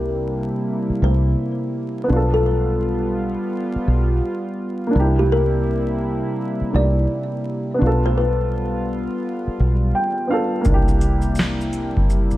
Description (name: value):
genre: lo-fi hip hop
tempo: 84 BPM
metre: 4/4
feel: swing 64% on 16ths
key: unclear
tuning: A4 = 440 Hz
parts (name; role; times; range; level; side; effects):
- kalimba; melody; 0.0-10.1 s; G4 to D5; -25 LUFS; left 2 dB; low-pass filter, tape echo
- dark upright piano; accompaniment; 0.0-12.4 s; Bb3 to G5; -25 LUFS; right 1 dB; cassette tape, low-pass filter
- warm analog pad; sustained chords; 0.0-12.4 s; C3 to F4; -24 LUFS; equal; chorus, low-pass filter
- deep dub fingered electric bass; bass; 0.0-12.4 s; B1 to C2; -20 LUFS; equal; none
- booming analog drum machine; drums; 10.6-12.4 s; hi-hat, kick drum, shaker, snare drum; -19 LUFS; equal; none
- tambourine; percussion; 11.4-11.6 s; none; barely audible; none; none
room: light reverb, studio ambience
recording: vinyl crackle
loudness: -18 LUFS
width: side -15 dB against mid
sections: 0.0-12.4 A section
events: upright piano fill 9.6-10.7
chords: 0.0 C7; 2.1 G7/B; 4.9 C7; 7.8 G7/B; 10.7 C7